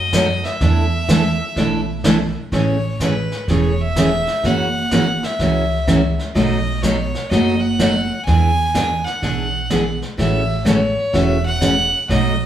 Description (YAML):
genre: country, western swing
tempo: 125 BPM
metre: 4/4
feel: swing 66% on 8ths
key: A major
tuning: A4 = 440 Hz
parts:
  - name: clear fiddle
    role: melody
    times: 0.0-12.5 s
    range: B4 to G#5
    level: -22 LUFS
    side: equal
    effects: none
  - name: upright bass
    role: bass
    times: 0.0-12.5 s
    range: E1 to F#2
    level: -20 LUFS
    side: right 1 dB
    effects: none
  - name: picked steel-string acoustic guitar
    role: accompaniment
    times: 0.1-12.3 s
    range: B2 to A4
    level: -18 LUFS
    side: right 1 dB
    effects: none
  - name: vintage brush drum kit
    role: drums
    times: 0.1-12.5 s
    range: brushed snare drum, hi-hat, kick drum, snare drum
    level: -26 LUFS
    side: left 1 dB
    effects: none
room: wet large studio reverb, RT60 1.2 s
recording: band playing live in one room, small room ambience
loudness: -15 LUFS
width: side -10 dB against mid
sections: 0.0-2.5 A section; 2.5-12.5 B section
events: none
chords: 0.0 B7; 0.6 E7sus4; 2.5 Amaj7; 4.4 F#7; 6.4 B7; 8.3 E7; 10.2 A6